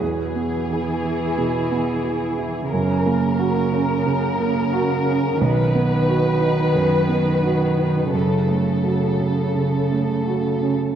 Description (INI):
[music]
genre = neoclassical piano and strings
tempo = 89 BPM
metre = 4/4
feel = uneven beats, rubato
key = E major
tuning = A4 = 440 Hz
[part]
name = muted chamber violin section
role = melody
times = 0.0-10.7 s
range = G#4 to B4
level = -24 LUFS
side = left 3 dB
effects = analog delay
[part]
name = muted cello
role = second line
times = 0.0-10.7 s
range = C#3 to E3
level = -23 LUFS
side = right 2 dB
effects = analog delay
[part]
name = warm grand piano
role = accompaniment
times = 0.0-11.0 s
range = B1 to G#4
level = -21 LUFS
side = right 3 dB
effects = none
[sound]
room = wet lush hall reverb, RT60 3.0 s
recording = dreamy mix soaked in reverb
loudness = -18 LUFS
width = side -9 dB against mid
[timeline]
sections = 0.0-11.0 A section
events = none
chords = 0.0 E; 2.7 F#; 5.4 B; 8.1 F#m